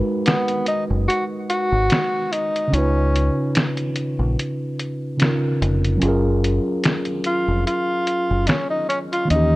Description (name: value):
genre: lo-fi hip hop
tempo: 73 BPM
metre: 4/4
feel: swing 56% on 16ths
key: unclear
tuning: A4 = 440 Hz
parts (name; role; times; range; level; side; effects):
- mellow tine electric piano; accompaniment; 0.0-9.6 s; C#3 to B4; -23 LUFS; right 1 dB; cassette tape, low-pass filter
- breathy tenor saxophone; melody; 0.3-9.6 s; B3 to F#4; -21 LUFS; equal; low-pass filter
- lo-fi sampler-style drum kit; drums; 0.3-9.5 s; finger snaps, hi-hat, snare drum; -23 LUFS; equal; none
- deep dub fingered electric bass; bass; 0.9-9.6 s; E#1 to D#2; -20 LUFS; equal; none
room: light reverb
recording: cassette tape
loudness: -18 LUFS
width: side -19 dB against mid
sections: 0.0-9.6 A section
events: break 0.0-9.6; kick muted 9.3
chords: 0.0 G#m7; 2.7 C#9; 6.0 F#maj7